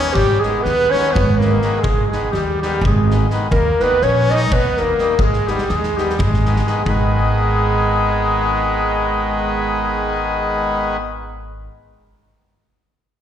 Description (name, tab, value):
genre	balkan folk, Balkan wedding band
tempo	251 BPM (eighths)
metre	7/8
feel	straight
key	G# harmonic minor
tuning	A4 = 442 Hz
part	dark clarinet	melody	0.0-10.9 s	G4 to D#5	-20 LUFS	right 1 dB	slapback echo
part	bright trumpet	second line	0.0-11.0 s	G3 to D#4	-24 LUFS	left 2 dB	slapback echo
part	accordion	accompaniment	0.0-11.0 s	D#3 to D#4	-22 LUFS	left 2 dB	slapback echo
part	upright bass	bass	0.1-11.7 s	G#1 to D#2	-20 LUFS	equal	none
part	loose indie drum kit	percussion	0.2-7.1 s	kick drum, snare drum	-23 LUFS	equal	none
room	light reverb, small room ambience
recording	live gig heard through the venue's PA, recital hall reverb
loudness	-15 LUFS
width	side -9 dB against mid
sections	0.0-6.9 A section; 6.9-10.2 B section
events	none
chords	0.1 G#m; 3.5 D#; 5.2 G#m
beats	| 0.15 0.39 0.63 0.87 1.11 1.35 1.59 | 1.83 2.08 2.31 2.56 2.79 3.04 3.27 | 3.52 3.75 3.99 4.23 4.47 4.71 4.95 | 5.19 5.43 5.67 5.91 6.15 6.39 6.63 | 6.87 7.10 7.34 7.58 7.82 8.06 8.30 | 8.54 8.77 9.01 9.25 9.49 9.73 9.96